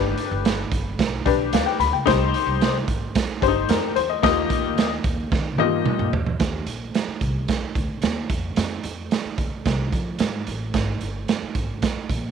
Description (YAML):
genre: uptempo 1960s-style soul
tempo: 111 BPM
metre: 4/4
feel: straight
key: Eb major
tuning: A4 = 439 Hz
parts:
  - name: warm upright piano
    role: accompaniment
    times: 0.0-6.1 s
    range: Bb3 to B5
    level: -21 LUFS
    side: left 13 dB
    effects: none
  - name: upright bass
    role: bass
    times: 0.0-12.3 s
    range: G1 to F3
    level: -28 LUFS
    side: equal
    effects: none
  - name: raw garage drum kit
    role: drums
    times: 0.2-12.2 s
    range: hi-hat, kick drum, snare drum, toms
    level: -23 LUFS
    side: right 4 dB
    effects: none
room: light reverb, small room ambience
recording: 1960s-style stereo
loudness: -20 LUFS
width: side -7 dB against mid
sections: 0.0-6.4 A section; 6.4-12.3 B section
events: drum fill 5.3-6.4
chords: 0.0 G; 2.1 Cm; 4.2 Ebadd9; 6.4 Eb5; 8.3 N.C.